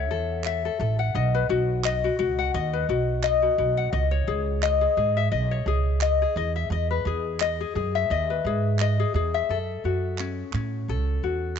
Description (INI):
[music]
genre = acoustic pop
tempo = 86 BPM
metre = 4/4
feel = swing 55% on 16ths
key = unclear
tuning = A4 = 440 Hz
[part]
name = ukulele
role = accompaniment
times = 0.0-11.6 s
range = C#4 to F#5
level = -25 LUFS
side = left 7 dB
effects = none
[part]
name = upright bass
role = bass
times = 0.0-11.6 s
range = A1 to A2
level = -26 LUFS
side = right 2 dB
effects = none
[part]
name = group handclap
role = percussion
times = 0.4-11.6 s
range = none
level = -32 LUFS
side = right 14 dB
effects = none
[sound]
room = light reverb, small room ambience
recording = 1960s-style stereo with parts hard left and right, nothing above 7.9 kHz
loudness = -22 LUFS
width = side -7 dB against mid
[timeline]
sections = 0.0-9.5 A section; 9.5-11.6 B section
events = none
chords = 0.0 F#m7; 1.2 B; 3.9 C#sus2; 6.4 Emaj7; 9.5 F#m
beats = 0.46 | 1.15 1.85 2.54 3.24 | 3.93 4.63 5.32 6.02 | 6.71 7.41 8.10 8.80 | 9.49 10.19 10.88 11.58